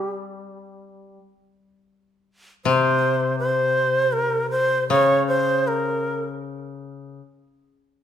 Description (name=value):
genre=japanese traditional, Japanese chamber music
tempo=free time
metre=none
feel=none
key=unclear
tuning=A4 = 439 Hz
part: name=breathy bright long shakuhachi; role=melody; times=0.0-6.2 s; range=Bb4 to Db5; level=-20 LUFS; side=right 1 dB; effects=none
part: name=koto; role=accompaniment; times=0.0-7.2 s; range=C3 to G3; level=-25 LUFS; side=left 4 dB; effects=none
room=moderate recital hall reverb, RT60 1.4 s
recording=minimal, uncompressed stereo recording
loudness=-18 LUFS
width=side -9 dB against mid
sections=0.0-8.0 A section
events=none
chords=none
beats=free time